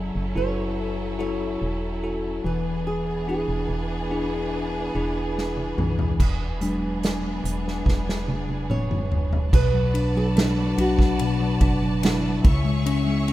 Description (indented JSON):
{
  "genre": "pop ballad",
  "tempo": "72 BPM",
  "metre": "4/4",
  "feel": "straight",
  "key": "unclear",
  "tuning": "A4 = 440 Hz",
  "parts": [
    { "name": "nylon-string guitar", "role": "melody", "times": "0.0-13.3 s", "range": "E4 to C#5", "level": "-31 LUFS", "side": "right 2 dB", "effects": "none" },
    { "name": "bell-like tine electric piano", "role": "accompaniment", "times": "0.0-13.3 s", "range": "B2 to A4", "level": "-25 LUFS", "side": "left 2 dB", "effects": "auto-pan" },
    { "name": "bright studio string section", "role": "sustained chords", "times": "0.0-13.3 s", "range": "E3 to C#6", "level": "-32 LUFS", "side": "right 1 dB", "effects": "none" },
    { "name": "organ-like FM bass", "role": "bass", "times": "0.0-13.3 s", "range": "E1 to C#2", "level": "-30 LUFS", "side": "equal", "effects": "none" },
    { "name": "unplugged drum kit", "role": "drums", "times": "5.4-13.3 s", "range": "crash cymbal, hi-hat, kick drum, ride cymbal, snare drum, toms", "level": "-23 LUFS", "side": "equal", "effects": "none" }
  ],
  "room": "light reverb, small room ambience",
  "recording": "rough home demo mix",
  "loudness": "-21 LUFS",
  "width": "side -15 dB against mid",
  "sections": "0.0-6.2 A section; 6.2-9.5 B section; 9.5-13.3 C section",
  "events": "drum fill 5.4-6.2, 7.9-9.5; tine electric piano solo 6.2-9.5",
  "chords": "0.0 F#m7; 2.4 E7; 9.5 Bm7; 12.4 C#m"
}